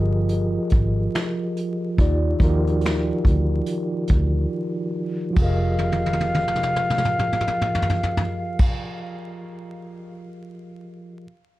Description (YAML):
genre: lo-fi hip hop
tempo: 71 BPM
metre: 4/4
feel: swing 65% on 16ths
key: F dorian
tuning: A4 = 440 Hz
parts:
  - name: mellow tine electric piano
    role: accompaniment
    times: 0.0-11.3 s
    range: Eb3 to Eb5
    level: -26 LUFS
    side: equal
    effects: medium stereo tremolo, cassette tape, low-pass filter
  - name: vintage muted fingered electric bass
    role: bass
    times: 0.0-8.7 s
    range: F1 to Eb2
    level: -22 LUFS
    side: equal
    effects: none
  - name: vintage brush drum kit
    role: drums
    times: 0.3-10.2 s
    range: crash cymbal, finger snaps, hi-hat, kick drum, snare drum, toms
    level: -22 LUFS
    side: equal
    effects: none
  - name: breathy concert flute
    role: melody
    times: 5.4-8.7 s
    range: F5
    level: -26 LUFS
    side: left 1 dB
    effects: low-pass filter, tape echo
room: light reverb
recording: dark, warm production, vinyl crackle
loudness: -20 LUFS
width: side -16 dB against mid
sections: 0.0-5.4 A section; 5.4-8.7 B section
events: break 4.5-5.4; drum fill 5.8-8.5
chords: 0.0 Fm11; 2.0 Ebmaj9; 5.4 Fm11